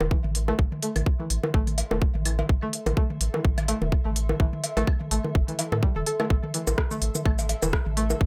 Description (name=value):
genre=minimal techno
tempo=126 BPM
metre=4/4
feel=swing 55% on 16ths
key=A minor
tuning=A4 = 436 Hz
part: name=round analog bass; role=bass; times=0.0-8.3 s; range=E1 to A2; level=-30 LUFS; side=equal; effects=sidechain pumping
part: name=electronic toms, bongos, woodblock and cowbell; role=percussion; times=0.0-8.2 s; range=none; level=-33 LUFS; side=equal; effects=tape echo
part: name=granular cloud pad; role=texture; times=0.0-8.3 s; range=A4 to C6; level=-43 LUFS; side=equal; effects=built-in reverb, sidechain pumping
part: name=string-like resonator pluck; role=riff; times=0.1-8.0 s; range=E3 to A4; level=-35 LUFS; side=equal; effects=chorus, sidechain pumping, tape echo
part: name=electronic kick drum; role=drums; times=0.1-8.3 s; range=none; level=-25 LUFS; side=equal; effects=none
part: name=minimal click drum kit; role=drums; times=0.3-8.2 s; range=hi-hat, rim click, shaker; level=-32 LUFS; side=equal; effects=none
room=light reverb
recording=none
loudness=-25 LUFS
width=mono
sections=0.0-8.3 A section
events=fade-in on ambient pad 0.0-8.3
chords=0.0 Am